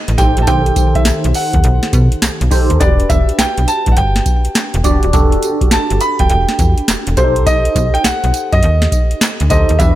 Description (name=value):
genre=R&B, new jack swing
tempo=103 BPM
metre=4/4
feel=swing 64% on 16ths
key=unclear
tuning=A4 = 440 Hz
part: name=clear baby grand piano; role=melody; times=0.0-10.0 s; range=C5 to B5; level=-17 LUFS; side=equal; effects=ping-pong delay
part: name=bell-like tine electric piano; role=accompaniment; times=0.0-10.0 s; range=D#3 to D5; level=-19 LUFS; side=right 1 dB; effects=phaser
part: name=slap-like FM bass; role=bass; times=0.1-10.0 s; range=D#1 to B2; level=-15 LUFS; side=equal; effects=none
part: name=booming analog drum machine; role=drums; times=0.1-10.0 s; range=handclaps, hi-hat, kick drum, snare drum, tambourine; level=-14 LUFS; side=equal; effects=none
room=digital ambience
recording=none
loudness=-11 LUFS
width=side -14 dB against mid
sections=0.0-10.0 A section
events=none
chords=0.0 B7b9b13; 2.8 Em7; 7.2 B7b9b13